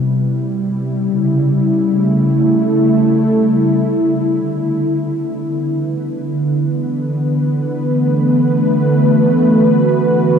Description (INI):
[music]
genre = ambient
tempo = free time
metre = none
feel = none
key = E minor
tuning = A4 = 440 Hz
[part]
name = warm analog pad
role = sustained chords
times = 0.0-10.4 s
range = C3 to B4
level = -13 LUFS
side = equal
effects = chorus
[part]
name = analog drone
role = drone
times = 6.9-10.4 s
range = E3 to B3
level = -22 LUFS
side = right 2 dB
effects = chorus
[sound]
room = wet huge ambient reverb, RT60 8.5 s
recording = none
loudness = -13 LUFS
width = side -7 dB against mid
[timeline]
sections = 0.0-10.4 A section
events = filter sweep on analog synth pad 0.0-10.4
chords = 0.0 Cmaj7; 1.0 A7; 4.2 Em7; 7.5 Bm7